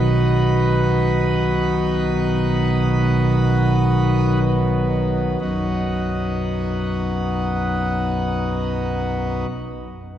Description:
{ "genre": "classical, chorale-style piece for pipe organ", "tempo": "free time", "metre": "none", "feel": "none", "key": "B major", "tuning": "A4 = 440 Hz", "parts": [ { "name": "pipe organ, principal chorus", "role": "solo", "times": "0.0-9.5 s", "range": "B1 to B4", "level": "-18 LUFS", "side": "equal", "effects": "none" } ], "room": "wet church reverb, RT60 2.7 s", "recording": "heard from further back in the room", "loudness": "-18 LUFS", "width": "side -10 dB against mid", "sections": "0.0-5.4 A section; 5.4-10.2 B section", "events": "slowing down 0.0-5.4", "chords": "0.0 B" }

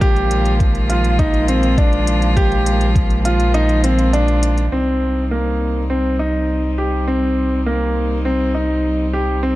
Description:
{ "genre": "piano and strings electronica", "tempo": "102 BPM", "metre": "4/4", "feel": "straight", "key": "C minor", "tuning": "A4 = 440 Hz", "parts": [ { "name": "warm string quartet", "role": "sustained chords", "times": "0.0-9.6 s", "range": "Eb3 to F4", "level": "-22 LUFS", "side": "right 1 dB", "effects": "sidechain pumping" }, { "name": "clear baby grand piano", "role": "riff", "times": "0.0-9.6 s", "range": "Bb3 to G4", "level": "-19 LUFS", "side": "equal", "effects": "tape echo" }, { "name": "warm sub bass", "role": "bass", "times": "0.0-9.6 s", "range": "Bb1 to C2", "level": "-19 LUFS", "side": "equal", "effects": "sidechain pumping" }, { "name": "electronic hi-hat", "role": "drums", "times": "0.0-4.7 s", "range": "none", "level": "-31 LUFS", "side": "left 2 dB", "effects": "overdrive, low-pass filter on hats, low-pass filter on room" }, { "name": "electronic kick drum", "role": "drums", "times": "0.0-3.1 s", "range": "none", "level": "-16 LUFS", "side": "equal", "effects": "none" } ], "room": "little or no reverb", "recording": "dark, warm production", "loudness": "-14 LUFS", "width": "side -17 dB against mid", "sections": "0.0-4.7 A section; 4.7-9.6 B section", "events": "kick drops out 3.5-4.7", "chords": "0.0 Bb7sus4; 4.7 Cm" }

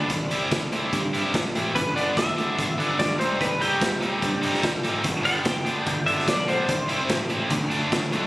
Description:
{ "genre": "indie rock", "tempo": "146 BPM", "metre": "4/4", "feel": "straight", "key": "G major", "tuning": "A4 = 442 Hz", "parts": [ { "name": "twelve-string electric guitar", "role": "melody", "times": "0.0-7.7 s", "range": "G4 to B5", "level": "-27 LUFS", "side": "equal", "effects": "analog delay" }, { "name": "high-gain distorted guitar", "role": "riff", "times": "0.0-8.3 s", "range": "C3 to E4", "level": "-26 LUFS", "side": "equal", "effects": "distortion" }, { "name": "fuzz picked electric bass", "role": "bass", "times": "0.1-8.3 s", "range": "F#1 to G2", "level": "-29 LUFS", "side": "equal", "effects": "overdrive" }, { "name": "raw garage drum kit", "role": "drums", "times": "0.1-8.2 s", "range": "hi-hat, kick drum, snare drum", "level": "-26 LUFS", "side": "equal", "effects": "none" } ], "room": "light reverb", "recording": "recorded on a phone in the room, studio reverb, compression", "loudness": "-21 LUFS", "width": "side -18 dB against mid", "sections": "0.0-8.3 A section", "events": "clean electric guitar solo 0.0-8.3", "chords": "0.1 C; 1.8 G; 3.2 Cm; 5.0 G; 6.7 C; 7.5 D" }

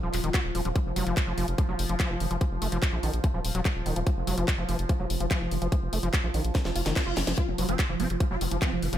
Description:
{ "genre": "psychedelic trance", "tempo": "145 BPM", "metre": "4/4", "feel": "straight", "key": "unclear", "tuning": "A4 = 440 Hz", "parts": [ { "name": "bubbling stepped-filter texture", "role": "sustained chords", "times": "0.0-9.0 s", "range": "F3", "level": "-35 LUFS", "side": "right 1 dB", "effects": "chorus, built-in reverb, sidechain pumping" }, { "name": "overdriven acid bass", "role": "riff", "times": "0.0-9.0 s", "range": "Eb3 to Gb4", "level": "-33 LUFS", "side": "equal", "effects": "distortion, auto-pan, sidechain pumping, dub echo" }, { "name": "round analog bass", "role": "bass", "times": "0.0-9.0 s", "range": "Eb1 to Bb1", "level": "-30 LUFS", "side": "equal", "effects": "none" }, { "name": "garage drum kit", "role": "drums", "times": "0.1-9.0 s", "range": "handclaps, hi-hat, snare drum", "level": "-33 LUFS", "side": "left 1 dB", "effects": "studio reverb" }, { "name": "electronic kick drum", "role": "drums", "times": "0.3-8.7 s", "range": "none", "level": "-26 LUFS", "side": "equal", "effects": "studio reverb" }, { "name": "reverse cymbal", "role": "sound effects", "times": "6.7-7.4 s", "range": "none", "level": "-38 LUFS", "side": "left 6 dB", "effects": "none" }, { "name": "swarming rave lead", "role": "melody", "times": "7.4-9.0 s", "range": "F3 to F4", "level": "-32 LUFS", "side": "right 2 dB", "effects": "chorus, phaser, sidechain pumping, dub echo" } ], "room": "light reverb, digital ambience", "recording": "none", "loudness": "-25 LUFS", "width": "side -11 dB against mid", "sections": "0.0-9.0 A section", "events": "filter sweep on acid bass 0.0-9.0; drum fill 6.5-7.4; reverse cymbal 6.7-7.4", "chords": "0.0 F5" }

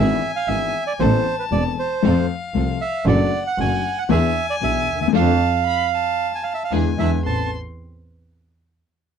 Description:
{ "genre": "tango", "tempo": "116 BPM", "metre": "4/4", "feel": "rubato", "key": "A harmonic minor", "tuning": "A4 = 440 Hz", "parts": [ { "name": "bandoneon", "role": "melody", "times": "0.0-7.5 s", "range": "B4 to A5", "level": "-22 LUFS", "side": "right 7 dB", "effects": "slapback echo" }, { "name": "warm violin", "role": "second line", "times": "0.0-7.5 s", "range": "F5 to C6", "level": "-28 LUFS", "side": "left 6 dB", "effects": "none" }, { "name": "warm grand piano", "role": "accompaniment", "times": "0.0-7.5 s", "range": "E1 to B4", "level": "-22 LUFS", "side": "left 15 dB", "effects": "none" }, { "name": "warm symphonic string section", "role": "stabs", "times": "0.0-7.5 s", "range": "B3 to B4", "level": "-31 LUFS", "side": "right 6 dB", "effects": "slapback echo" }, { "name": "clear double bass", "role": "bass", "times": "0.0-7.5 s", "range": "E1 to F2", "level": "-21 LUFS", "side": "right 2 dB", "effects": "none" } ], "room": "light reverb", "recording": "dry, close 1970s-style studio recording", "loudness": "-18 LUFS", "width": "side -7 dB against mid", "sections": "0.0-7.3 A section; 7.3-9.2 B section", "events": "band accent 5.1-7.3", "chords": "0.0 E7/G#; 1.0 Amadd9; 2.0 F; 3.1 D/F#; 4.1 E7; 5.1 F6; 6.7 E7; 7.3 Amadd9" }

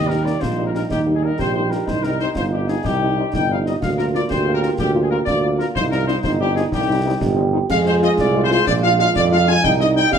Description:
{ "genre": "military-style march for wind band", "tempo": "124 BPM (dotted quarters)", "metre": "6/8", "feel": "straight", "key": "unclear", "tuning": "A4 = 440 Hz", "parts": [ { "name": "warm trumpet section", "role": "melody", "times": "0.0-10.2 s", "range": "G4 to Ab5", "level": "-21 LUFS", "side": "left 2 dB", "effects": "none" }, { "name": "warm euphonium", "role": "second line", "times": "0.0-10.2 s", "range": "Eb4 to Ab4", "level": "-23 LUFS", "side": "right 4 dB", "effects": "none" }, { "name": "warm trombone section", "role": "sustained chords", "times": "0.0-10.2 s", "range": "G3 to F4", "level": "-26 LUFS", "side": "right 2 dB", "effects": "none" }, { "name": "warm tuba", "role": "bass", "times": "0.0-10.2 s", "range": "G1 to F2", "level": "-21 LUFS", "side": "right 2 dB", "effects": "none" }, { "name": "mellow French horn section", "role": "accompaniment", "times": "0.1-10.0 s", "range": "G3 to F4", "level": "-26 LUFS", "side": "left 5 dB", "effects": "none" }, { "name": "concert snare drum, concert bass drum and clash cymbals", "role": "drums", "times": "0.1-10.2 s", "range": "none", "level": "-28 LUFS", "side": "left 2 dB", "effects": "none" } ], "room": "wet large studio reverb, RT60 1.0 s", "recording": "dark, warm production", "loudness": "-16 LUFS", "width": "side -7 dB against mid", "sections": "0.0-10.2 A section", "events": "none", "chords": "0.0 Eb; 1.9 Cm; 3.8 Bb/D; 5.8 Cm; 7.7 Fm; 8.7 Bb7; 9.6 Cm" }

